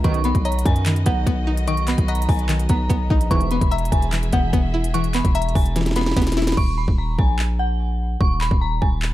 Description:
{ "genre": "hip hop, trap", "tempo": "147 BPM", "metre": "4/4", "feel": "half-time", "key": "Eb phrygian", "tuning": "A4 = 440 Hz", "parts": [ { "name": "dark detuned synth bell", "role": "melody", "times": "0.0-9.0 s", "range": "F#5 to Db6", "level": "-27 LUFS", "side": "equal", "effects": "chorus, phaser, digital delay" }, { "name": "soft round pluck", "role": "second line", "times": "0.0-6.5 s", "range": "B4 to F#5", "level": "-33 LUFS", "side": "left 6 dB", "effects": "chorus, digital delay" }, { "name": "string-like resonator pluck", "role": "accompaniment", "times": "0.0-6.6 s", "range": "D#3 to E5", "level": "-26 LUFS", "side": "left 2 dB", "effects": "chorus" }, { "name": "warm symphonic string section", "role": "sustained chords", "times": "0.0-6.5 s", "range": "D#3 to E5", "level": "-32 LUFS", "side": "equal", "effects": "none" }, { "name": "warm brass ensemble", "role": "stabs", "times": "0.0-0.3, 3.3-3.6 s", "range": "B1 to E3", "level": "-31 LUFS", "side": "right 7 dB", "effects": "digital delay" }, { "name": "distorted 808-style bass", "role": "bass", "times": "0.0-9.1 s", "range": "Eb1 to F#2", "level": "-22 LUFS", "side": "equal", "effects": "distortion" }, { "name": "trap drum kit", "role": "drums", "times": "0.0-9.1 s", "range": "crash cymbal, handclaps, hi-hat, kick drum, snare drum", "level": "-20 LUFS", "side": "equal", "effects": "none" } ], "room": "digital ambience", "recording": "dark, warm production", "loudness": "-17 LUFS", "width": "side -15 dB against mid", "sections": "0.0-6.6 A section; 6.6-9.1 B section", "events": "drum fill 5.8-6.6; hi-hats muted 6.6-9.1", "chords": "0.0 B; 3.3 E; 6.6 Ebm" }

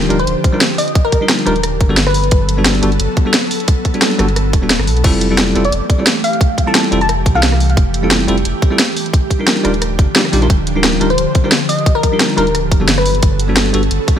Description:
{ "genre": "liquid drum and bass", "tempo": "176 BPM", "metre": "4/4", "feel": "swing 54% on 16ths", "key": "F lydian", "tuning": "A4 = 439 Hz", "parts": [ { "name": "bell-like tine electric piano", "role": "accompaniment", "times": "0.0-14.2 s", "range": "G3 to Bb4", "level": "-18 LUFS", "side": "left 1 dB", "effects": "digital delay" }, { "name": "ethereal airy pad", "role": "sustained chords", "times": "0.0-14.2 s", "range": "D3 to A4", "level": "-20 LUFS", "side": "equal", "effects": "ensemble chorus, built-in reverb, sidechain pumping" }, { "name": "warm sub bass", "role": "bass", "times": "0.0-14.0 s", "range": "D1 to C2", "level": "-17 LUFS", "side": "equal", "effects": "none" }, { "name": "drum and bass drum kit", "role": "drums", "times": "0.0-14.2 s", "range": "crash cymbal, hi-hat, rim click, snare drum", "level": "-16 LUFS", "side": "equal", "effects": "studio reverb" }, { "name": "glassy wavetable pluck", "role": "melody", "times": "0.2-2.4, 5.7-7.6, 11.1-13.3 s", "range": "Bb4 to A5", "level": "-19 LUFS", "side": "left 2 dB", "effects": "chorus, digital delay" }, { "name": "electronic kick drum", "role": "drums", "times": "0.4-14.2 s", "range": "none", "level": "-13 LUFS", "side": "equal", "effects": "studio reverb" } ], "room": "light reverb, digital ambience", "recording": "none", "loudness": "-11 LUFS", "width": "side -9 dB against mid", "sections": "0.0-5.0 A section; 5.0-14.2 A section", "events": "drop 0.0-5.0, 5.0-14.2", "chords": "0.0 Ebmaj9; 1.6 Gmaj9; 5.0 Fmaj9; 9.0 Ebmaj9; 12.5 Gmaj9" }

